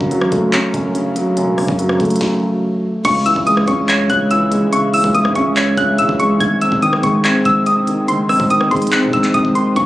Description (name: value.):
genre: hip hop, trap.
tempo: 143 BPM.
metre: 4/4.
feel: half-time.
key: C# harmonic minor.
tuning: A4 = 440 Hz.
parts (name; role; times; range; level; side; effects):
felt-muted upright piano; accompaniment; 0.0-9.9 s; F#2 to C#5; -16 LUFS; equal; low-pass filter.
distorted 808-style bass; bass; 0.0-9.9 s; E1 to C#3; -22 LUFS; equal; distortion.
trap drum kit; drums; 0.0-9.9 s; crash cymbal, handclaps, hi-hat, kick drum, rim click, snare drum; -22 LUFS; equal; vintage 12-bit sampler grit.
soft round pluck; melody; 3.0-9.9 s; B#5 to G#6; -16 LUFS; equal; chorus, low-pass filter.
deep dark ambient pad; sustained chords; 4.7-9.9 s; G#3 to E5; -26 LUFS; right 1 dB; chorus, built-in reverb.
room: light reverb, digital ambience.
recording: recorded on a phone in the room, club reverb, compression.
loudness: -13 LUFS.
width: side -16 dB against mid.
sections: 0.0-3.0 A section; 3.0-9.9 B section.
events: break 0.0-3.0; stop 2.2-3.0.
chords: 0.0 F#m; 3.0 C#m; 6.4 G#.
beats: 0.11 0.53 0.95 | 1.37 1.79 2.21 2.63 | 3.05 3.47 3.89 4.31 | 4.73 5.15 5.57 5.99 | 6.41 6.83 7.24 7.66 | 8.08 8.50 8.92 9.34 | 9.76.